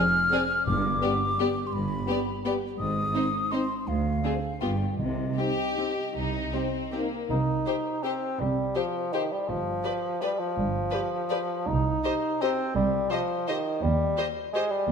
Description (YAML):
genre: classical, orchestral ballroom waltz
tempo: 146-183 BPM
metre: 3/4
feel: rubato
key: C minor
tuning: A4 = 442 Hz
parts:
  - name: warm studio violin section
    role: melody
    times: 0.0-14.6 s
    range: G4 to Eb5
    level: -37 LUFS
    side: left 6 dB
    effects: none
  - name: mellow hollow silver concert flute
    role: second line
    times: 0.0-7.1 s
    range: Eb5 to F6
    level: -29 LUFS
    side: left 1 dB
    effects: none
  - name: warm studio viola section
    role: accompaniment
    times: 0.0-14.6 s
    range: B3 to G4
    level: -37 LUFS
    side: right 3 dB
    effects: none
  - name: mellow French horn section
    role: sustained chords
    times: 0.0-7.1 s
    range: B3 to Ab4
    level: -34 LUFS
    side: left 3 dB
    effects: none
  - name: clear chamber violin section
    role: second line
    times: 0.3-14.6 s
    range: Bb3 to C5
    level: -34 LUFS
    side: left 4 dB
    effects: none
  - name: rich chamber cello section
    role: bass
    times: 0.7-14.9 s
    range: C2 to C3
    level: -32 LUFS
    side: right 2 dB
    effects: none
  - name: rich chamber double bass section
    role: bass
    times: 0.7-14.9 s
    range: G1 to Eb2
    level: -32 LUFS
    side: right 3 dB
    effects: none
  - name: timpani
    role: percussion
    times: 0.7-1.2, 5.0-5.5 s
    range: G2 to C3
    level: -35 LUFS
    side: left 2 dB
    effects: none
  - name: warm bassoon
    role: accompaniment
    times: 7.3-14.9 s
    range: Eb3 to Eb4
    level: -28 LUFS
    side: equal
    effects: none
room: moderate scoring stage reverb, RT60 1.6 s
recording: none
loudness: -25 LUFS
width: side -6 dB against mid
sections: 0.0-7.3 A section; 7.3-14.9 A section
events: none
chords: 0.0 Dm7b5/F (rootless); 0.7 G; 2.8 Ab; 3.9 Dm7b5; 4.6 G7; 5.0 Cm; 9.5 G7(no3); 11.7 Cm; 13.8 Cm/Eb (rootless)